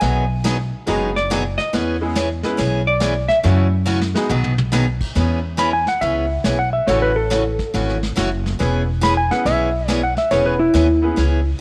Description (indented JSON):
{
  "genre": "country, western swing",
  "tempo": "140 BPM",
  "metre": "4/4",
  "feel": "swing 66% on 8ths",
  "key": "E major",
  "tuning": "A4 = 440 Hz",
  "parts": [
    { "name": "vintage hollow-body jazz guitar", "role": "second line", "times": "0.0-3.4 s", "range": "D5 to G#5", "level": "-23 LUFS", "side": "equal", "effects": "none" },
    { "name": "picked acoustic archtop guitar", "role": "accompaniment", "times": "0.0-11.4 s", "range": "B2 to G#4", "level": "-25 LUFS", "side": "equal", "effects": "none" },
    { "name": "upright bass", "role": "bass", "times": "0.0-11.5 s", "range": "E1 to F#2", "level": "-23 LUFS", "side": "equal", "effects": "none" },
    { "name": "vintage brush drum kit", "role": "drums", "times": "0.0-11.6 s", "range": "brushed snare drum, crash cymbal, hi-hat, kick drum, snare drum, toms", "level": "-29 LUFS", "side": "equal", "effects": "none" },
    { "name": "bright upright piano", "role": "accompaniment", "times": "0.9-11.2 s", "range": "G#3 to B4", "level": "-28 LUFS", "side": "equal", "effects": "none" },
    { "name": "clean lap steel guitar", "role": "second line", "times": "5.6-11.4 s", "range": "E4 to B5", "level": "-21 LUFS", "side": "equal", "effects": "none" }
  ],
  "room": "light reverb, small room ambience",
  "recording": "none",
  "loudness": "-18 LUFS",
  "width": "mono",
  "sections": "0.0-5.2 A section; 5.2-11.6 A section",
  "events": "hollow-body jazz guitar solo 0.0-5.2; drum fill 3.9-4.7; electric slide guitar solo 5.2-11.6",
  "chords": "0.0 B6; 1.7 E6; 3.4 F#m7; 4.3 B6; 5.2 E6; 6.9 A6; 8.6 E6"
}